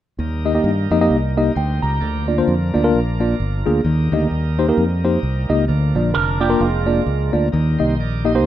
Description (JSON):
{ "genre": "uptempo gospel", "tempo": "131 BPM", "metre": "4/4", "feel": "swing 58% on 8ths", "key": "Eb major", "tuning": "A4 = 440 Hz", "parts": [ { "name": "mellow tine electric piano", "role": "accompaniment", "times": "0.2-8.4 s", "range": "D3 to Bb5", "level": "-18 LUFS", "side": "left 1 dB", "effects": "medium stereo tremolo" }, { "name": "bright tonewheel organ", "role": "sustained chords", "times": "0.2-8.5 s", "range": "F3 to Eb5", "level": "-30 LUFS", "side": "right 2 dB", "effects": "slow rotary speaker, overdrive" }, { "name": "fingered electric bass", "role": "bass", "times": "0.2-8.4 s", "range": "F1 to G2", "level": "-20 LUFS", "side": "equal", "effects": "none" }, { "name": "electric guitar with an envelope filter", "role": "second line", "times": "6.1-7.3 s", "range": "Ab3 to Bb4", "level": "-22 LUFS", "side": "right 7 dB", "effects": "spring reverb" } ], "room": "light reverb", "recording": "rough home demo mix", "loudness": "-16 LUFS", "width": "side -12 dB against mid", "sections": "0.2-3.9 A section; 3.9-8.5 B section", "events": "none", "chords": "0.2 Eb; 2.0 Bb/D; 3.9 Eb; 5.7 Bb; 7.5 Eb", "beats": "| 0.18 0.64 1.10 1.56 | 2.02 2.48 2.94 3.40 | 3.86 4.32 4.78 5.23 | 5.69 6.15 6.61 7.07 | 7.53 7.99 8.45" }